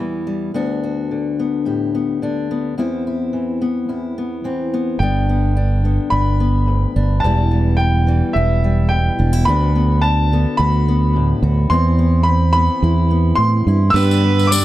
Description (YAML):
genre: indie folk with a building arrangement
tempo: 107 BPM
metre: 4/4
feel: straight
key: G major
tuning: A4 = 440 Hz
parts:
  - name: fingerpicked steel-string acoustic guitar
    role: accompaniment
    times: 0.0-13.9 s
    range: D2 to G4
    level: -20 LUFS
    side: left 3 dB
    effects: none
  - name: clear upright piano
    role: melody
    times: 5.0-14.6 s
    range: E5 to E6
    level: -21 LUFS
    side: equal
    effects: tape echo
  - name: fingered electric bass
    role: bass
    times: 5.0-14.6 s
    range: E1 to A2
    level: -15 LUFS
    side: right 1 dB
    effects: none
  - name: rich fiddle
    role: second line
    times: 13.9-14.6 s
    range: B4 to D5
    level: -20 LUFS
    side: right 7 dB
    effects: none
  - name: picked steel-string acoustic guitar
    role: accompaniment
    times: 13.9-14.6 s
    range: G3 to G4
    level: -23 LUFS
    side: left 7 dB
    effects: none
  - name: warm concert grand piano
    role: accompaniment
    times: 13.9-14.6 s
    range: G1 to B4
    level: -23 LUFS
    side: right 5 dB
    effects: none
  - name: tambourine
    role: percussion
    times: 14.0-14.6 s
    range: none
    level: -23 LUFS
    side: left 6 dB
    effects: none
room: small room ambience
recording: dark, warm production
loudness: -14 LUFS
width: side -14 dB against mid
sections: 0.0-5.0 A section; 5.0-14.6 B section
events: build-up 5.0-14.6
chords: 0.0 Em; 0.5 D6; 2.8 Cmaj7/E; 5.0 G; 7.2 Em; 9.5 D6; 11.7 Cmaj7/E; 14.0 G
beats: | 0.55 1.10 1.66 2.22 | 2.78 3.34 3.90 4.46 | 5.01 5.57 6.13 6.69 | 7.25 7.80 8.36 8.92 | 9.48 10.04 10.60 11.16 | 11.72 12.28 12.84 13.39 | 13.95 14.51